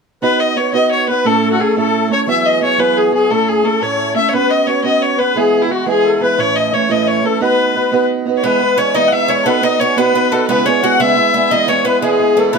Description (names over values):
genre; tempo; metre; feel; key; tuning
celtic folk; 117 BPM (dotted quarters); 6/8; straight; unclear; A4 = 444 Hz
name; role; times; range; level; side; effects
rich fiddle; melody; 0.2-12.6 s; E4 to F#5; -15 LUFS; left 4 dB; none
musette accordion; second line; 0.2-12.6 s; E4 to F#5; -19 LUFS; left 2 dB; none
picked acoustic archtop guitar; accompaniment; 0.2-12.6 s; A2 to B4; -16 LUFS; right 8 dB; none
Irish bouzouki; second line; 8.4-12.6 s; G#3 to F#4; -21 LUFS; right 4 dB; none
room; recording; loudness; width
light reverb; none; -12 LUFS; side -5 dB against mid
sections
0.2-8.4 A section; 8.4-12.6 B section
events
none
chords
0.2 B; 1.3 A; 2.3 Eadd9; 3.3 A; 4.3 Bsus2; 5.4 E; 6.4 A; 7.4 B; 8.4 E; 9.5 B; 10.5 C#m7; 11.5 E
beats
| 0.23 0.74 | 1.25 1.77 | 2.28 2.79 | 3.31 3.82 | 4.33 4.84 | 5.36 5.87 | 6.38 6.90 | 7.41 7.92 | 8.43 8.95 | 9.46 9.97 | 10.49 11.00 | 11.51 12.03 | 12.54